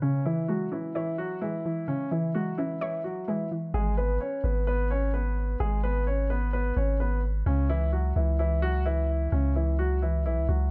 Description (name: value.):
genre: hip hop.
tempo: 129 BPM.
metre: 4/4.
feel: half-time.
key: G# minor.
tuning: A4 = 440 Hz.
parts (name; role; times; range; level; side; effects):
dark baby grand piano; melody; 0.0-10.7 s; C#3 to C#5; -32 LUFS; equal; low-pass filter, delay.
soft round pluck; accompaniment; 0.0-3.7 s; C#3 to C#5; -33 LUFS; equal; chorus, low-pass filter.
long sustained 808-style bass; bass; 3.7-10.7 s; G#1 to C#2; -28 LUFS; equal; none.
room: light reverb.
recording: none.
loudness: -28 LUFS.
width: mono.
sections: 0.0-3.7 A section; 3.7-10.7 B section.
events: filter sweep 0.0-3.7.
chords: 0.0 C#m; 3.7 G#m; 7.5 C#m.